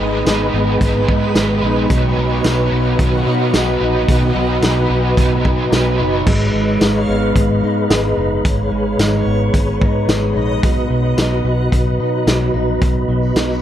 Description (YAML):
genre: dream pop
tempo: 110 BPM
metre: 4/4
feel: straight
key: B major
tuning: A4 = 440 Hz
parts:
  - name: overdriven semi-hollow guitar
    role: accompaniment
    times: 0.0-6.3 s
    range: G#2 to B4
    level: -21 LUFS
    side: right 3 dB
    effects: harmonic tremolo, analog chorus
  - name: mellow tonewheel organ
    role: sustained chords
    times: 0.0-13.6 s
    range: F#4 to B5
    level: -21 LUFS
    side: equal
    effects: chorus vibrato, fast rotary speaker
  - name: electric guitar at the edge of break-up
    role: arpeggios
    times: 0.0-13.6 s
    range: G#2 to D#4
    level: -19 LUFS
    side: equal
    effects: wide subtle chorus, digital delay
  - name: vintage muted fingered electric bass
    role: bass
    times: 0.0-13.6 s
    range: F#1 to B2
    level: -20 LUFS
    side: equal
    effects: none
  - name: loose indie drum kit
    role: drums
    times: 0.3-13.5 s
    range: crash cymbal, hi-hat, kick drum, snare drum, tambourine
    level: -18 LUFS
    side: equal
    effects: none
  - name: backwards swelling texture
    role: texture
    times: 0.3-13.6 s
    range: B4 to C#6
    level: -29 LUFS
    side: left 1 dB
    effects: built-in reverb, digital delay
room: light reverb, small room ambience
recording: dark, warm production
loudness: -13 LUFS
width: side -10 dB against mid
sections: 0.0-6.3 A section; 6.3-13.6 B section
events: none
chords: 0.0 B; 6.3 G#m; 10.6 B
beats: 0.27 0.81 1.36 | 1.90 2.45 3.00 3.54 | 4.09 4.63 5.18 5.72 | 6.27 6.81 7.36 7.90 | 8.45 8.99 9.54 10.09 | 10.63 11.18 11.72 12.27 | 12.81 13.36